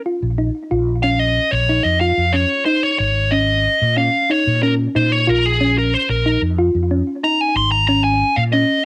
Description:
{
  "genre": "progressive instrumental, band music in an uneven meter",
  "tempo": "184 BPM (eighths)",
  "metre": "7/8",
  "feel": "straight",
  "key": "Bb minor",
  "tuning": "A4 = 440 Hz",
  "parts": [
    { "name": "thumb-piano-like synth pluck", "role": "arpeggios", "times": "0.1-8.7 s", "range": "Db4 to F4", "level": "-23 LUFS", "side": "equal", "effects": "chorus, cassette tape, tape echo" },
    { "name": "mellow fretless electric bass", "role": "bass", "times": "0.2-8.6 s", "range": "Ab1 to Bb2", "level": "-22 LUFS", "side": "equal", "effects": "ensemble chorus" },
    { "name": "smooth overdriven lead guitar", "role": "melody", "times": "1.0-8.8 s", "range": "Ab4 to C6", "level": "-19 LUFS", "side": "equal", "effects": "cassette tape" }
  ],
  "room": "light reverb",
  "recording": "home recording on cassette",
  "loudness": "-17 LUFS",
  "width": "mono",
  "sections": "0.7-8.8 A section",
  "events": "lead electric guitar solo 0.7-8.8",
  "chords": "0.0 Bb5; 0.7 Bbm7"
}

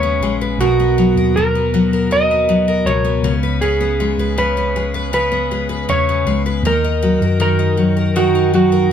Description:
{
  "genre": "pop",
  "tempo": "79 BPM",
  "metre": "4/4",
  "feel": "straight",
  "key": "unclear",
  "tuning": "A4 = 440 Hz",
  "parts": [
    { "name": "electric slide guitar", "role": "melody", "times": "0.0-8.9 s", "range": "F#4 to D#5", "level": "-17 LUFS", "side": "right 3 dB", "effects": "none" },
    { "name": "picked twelve-string acoustic guitar", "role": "accompaniment", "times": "0.0-8.9 s", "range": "B2 to B4", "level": "-17 LUFS", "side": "left 4 dB", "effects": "none" },
    { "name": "mellow tine electric piano", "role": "bass", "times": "0.0-8.9 s", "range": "A#1 to F#2", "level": "-21 LUFS", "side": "right 1 dB", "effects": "slow stereo tremolo" }
  ],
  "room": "moderate studio ambience, RT60 0.5 s",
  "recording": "none",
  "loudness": "-14 LUFS",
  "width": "side -8 dB against mid",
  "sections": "0.0-8.9 A section",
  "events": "none",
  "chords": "0.0 C#7(no3); 0.6 Bmaj7; 3.2 C#7(no3); 6.6 D#m"
}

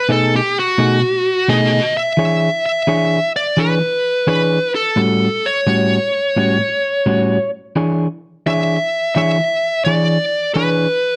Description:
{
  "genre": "blues",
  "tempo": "86 BPM",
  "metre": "4/4",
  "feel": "swing 67% on 8ths",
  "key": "E mixolydian",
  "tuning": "A4 = 440 Hz",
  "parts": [
    { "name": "smooth overdriven lead guitar", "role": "melody", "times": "0.0-11.2 s", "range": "F#4 to E5", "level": "-18 LUFS", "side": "equal", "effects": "none" },
    { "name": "electric guitar at the edge of break-up", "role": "riff", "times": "0.1-10.9 s", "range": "A2 to C#5", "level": "-19 LUFS", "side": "equal", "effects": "none" }
  ],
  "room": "moderate club reverb, RT60 0.8 s",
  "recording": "nothing above 10.4 kHz",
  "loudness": "-16 LUFS",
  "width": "mono",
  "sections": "0.0-2.2 A section; 2.2-11.2 B section",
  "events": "lead electric guitar solo 0.0-2.2",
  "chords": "0.0 B6; 2.2 E6; 5.0 A6; 7.8 E6"
}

